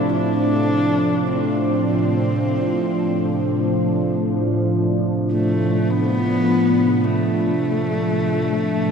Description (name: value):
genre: ambient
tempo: free time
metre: none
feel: none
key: unclear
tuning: A4 = 440 Hz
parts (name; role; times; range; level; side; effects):
- rich horsehead fiddle; melody; 0.0-8.9 s; A3 to D4; -23 LUFS; left 1 dB; diffuse ambient delay
- sweeping resonant pad; sustained chords; 0.0-8.9 s; A2 to D4; -18 LUFS; right 1 dB; chorus
room: wet cathedral reverb, RT60 6.3 s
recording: in a vast, echoing space, cassette tape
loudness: -17 LUFS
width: side -6 dB against mid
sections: 0.0-8.9 A section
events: none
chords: 0.0 F/A